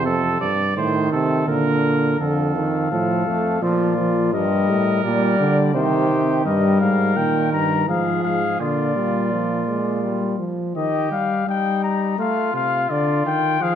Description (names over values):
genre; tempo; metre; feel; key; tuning
classical, imitative canzona for brass ensemble; 84 BPM; 3/4; straight; Eb major from 6.5 s; A4 = 440 Hz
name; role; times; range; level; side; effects
mellow trumpet; second line; 0.0-13.8 s; Eb4 to D5; -26 LUFS; right 4 dB; none
warm trombone; accompaniment; 0.0-13.8 s; C3 to A3; -21 LUFS; equal; none
warm euphonium; bass; 0.0-10.4 s; F2 to D3; -23 LUFS; right 2 dB; none
mellow trumpet; melody; 2.2-13.8 s; C5 to Bb5; -24 LUFS; left 8 dB; none
room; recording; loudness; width
wet recital hall reverb, RT60 1.4 s; none; -18 LUFS; side -9 dB against mid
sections
0.0-2.2 A section; 2.2-10.8 B section; 10.8-13.8 C section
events
none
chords
0.1 F; 1.5 Bb; 2.2 Dm/F; 3.6 Bb; 4.3 Eb/G; 5.7 Cm; 6.5 Eb/G; 7.9 Fm/Ab; 8.6 Bb; 10.8 Eb; 12.2 F/A; 12.9 Dm